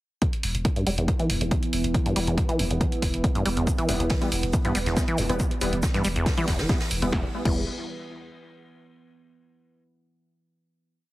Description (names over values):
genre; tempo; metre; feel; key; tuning
driving peak-time techno; 139 BPM; 4/4; straight; E minor; A4 = 441 Hz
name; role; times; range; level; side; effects
acid bass, saw; riff; 0.2-7.7 s; E2 to G3; -28 LUFS; equal; sidechain pumping, digital delay
analog drone; drone; 0.5-7.2 s; E3 to B3; -32 LUFS; right 1 dB; chorus, sidechain pumping
electronic kick drum; drums; 0.2-7.5 s; none; -25 LUFS; equal; none
punchy analog drum machine; drums; 0.2-7.5 s; crash cymbal, hi-hat, snare drum; -32 LUFS; right 1 dB; sidechain pumping on hats, sidechain pumping on cymbals
saturated sub bass; bass; 0.4-7.7 s; E1; -30 LUFS; equal; tube saturation, sidechain pumping, low-pass filter
soft brush drum kit; drums; 3.7-7.0 s; hi-hat, shaker, snare drum; -37 LUFS; right 1 dB; sidechain pumping on hats, high-pass filter on hats, high-pass filter on snare, sidechain pumping on perc, high-pass filter on perc, high-pass filter on room
rave stab; stabs; 3.9-7.6 s; E3 to B3; -30 LUFS; left 1 dB; chorus, built-in reverb, sidechain pumping, digital delay
room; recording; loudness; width
moderate stone room reverb, RT60 1.3 s, digital ambience; heavily compressed radio sound; -22 LUFS; side -17 dB against mid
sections
0.2-7.1 groove; 7.1-8.9 final chord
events
filter sweep on acid bass 0.2-7.1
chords
0.2 Em